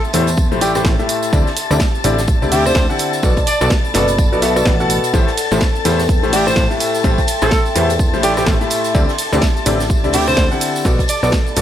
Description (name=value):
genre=piano house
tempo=126 BPM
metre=4/4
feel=swing 59% on 16ths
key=A dorian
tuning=A4 = 442 Hz
part: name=warm studio violin section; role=sustained chords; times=0.0-11.6 s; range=A5 to A6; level=-24 LUFS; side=left 4 dB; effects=sidechain pumping
part: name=house drum kit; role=drums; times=0.0-11.6 s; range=hi-hat, ride cymbal, rim click, shaker, snare drum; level=-23 LUFS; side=right 2 dB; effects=none
part: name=tambourine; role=percussion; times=0.0-11.5 s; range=none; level=-33 LUFS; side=right 2 dB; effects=none
part: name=warbly tape-like pad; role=texture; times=0.0-11.6 s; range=G4 to C6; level=-26 LUFS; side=left 1 dB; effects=chorus, built-in reverb, sidechain pumping
part: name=clear upright piano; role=riff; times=0.1-11.6 s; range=A2 to F#5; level=-19 LUFS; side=left 2 dB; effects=sidechain pumping
part: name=plucky analog bass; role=bass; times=0.1-11.6 s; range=F#1 to E2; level=-19 LUFS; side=equal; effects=sidechain pumping
part: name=loose indie drum kit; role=drums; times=0.1-11.6 s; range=hi-hat, snare drum, tambourine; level=-30 LUFS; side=right 2 dB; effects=sidechain pumping on hats, high-pass filter on hats, high-pass filter on snare, sidechain pumping on perc, high-pass filter on perc, high-pass filter on room
part: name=electronic kick drum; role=drums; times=0.4-11.4 s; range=none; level=-16 LUFS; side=equal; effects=none
part: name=bright alto saxophone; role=melody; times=0.6-11.3 s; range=G4 to D5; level=-22 LUFS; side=right 1 dB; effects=dub echo
room=light reverb, small room ambience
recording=none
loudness=-13 LUFS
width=side -10 dB against mid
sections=0.0-11.6 A section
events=none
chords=0.0 Am7; 1.3 D9sus4; 3.2 Bm7; 5.1 Am7; 8.9 D9sus4; 10.9 Bm7